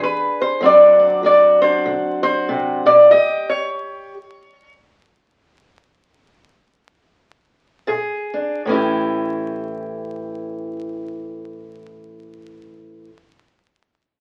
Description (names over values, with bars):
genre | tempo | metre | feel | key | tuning
acoustic country blues, solo or duo | 73-96 BPM | 4/4 | swing 60% on 8ths | A mixolydian | A4 = 443 Hz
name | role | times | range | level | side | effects
lap resonator guitar | melody | 0.0-4.7 s | B4 to D#5 | -15 LUFS | equal | none
fingerpicked steel-string acoustic guitar | accompaniment | 0.0-13.2 s | A2 to G#4 | -26 LUFS | equal | none
room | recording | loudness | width
moderate studio reverb, RT60 0.8 s | very old 78 rpm record, vinyl crackle | -16 LUFS | mono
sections
0.0-8.6 A section; 8.6-11.9 B section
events
slowing down 3.1-8.6; stop 3.1-7.8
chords
0.0 E7; 0.6 D7; 3.1 A7; 7.8 Bb7; 8.6 A7